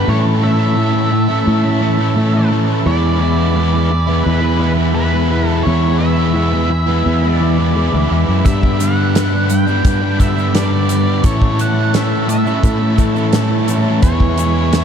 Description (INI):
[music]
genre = psychedelic rock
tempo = 86 BPM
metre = 4/4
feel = straight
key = E mixolydian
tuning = A4 = 439 Hz
[part]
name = octave-fuzz lead guitar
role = melody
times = 0.0-14.8 s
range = B4 to G5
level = -22 LUFS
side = equal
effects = distortion, analog delay
[part]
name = overdriven combo organ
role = sustained chords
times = 0.0-14.8 s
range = E4 to B5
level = -26 LUFS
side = right 3 dB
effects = none
[part]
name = overdriven electric guitar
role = riff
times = 0.0-14.8 s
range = G2 to E4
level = -17 LUFS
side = equal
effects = harmonic tremolo
[part]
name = fingered electric bass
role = bass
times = 0.0-14.8 s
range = D2 to A2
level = -16 LUFS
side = equal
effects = none
[part]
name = damped 70s drum kit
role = drums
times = 8.5-14.8 s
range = hi-hat, kick drum, snare drum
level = -17 LUFS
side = equal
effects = none
[part]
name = egg shaker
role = percussion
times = 8.5-14.8 s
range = none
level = -34 LUFS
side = left 19 dB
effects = none
[sound]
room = moderate cathedral reverb, RT60 4.9 s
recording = dreamy mix soaked in reverb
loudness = -12 LUFS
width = side -8 dB against mid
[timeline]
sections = 0.0-14.8 A section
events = none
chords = 0.1 A; 2.9 E; 8.5 G; 11.2 A; 14.0 E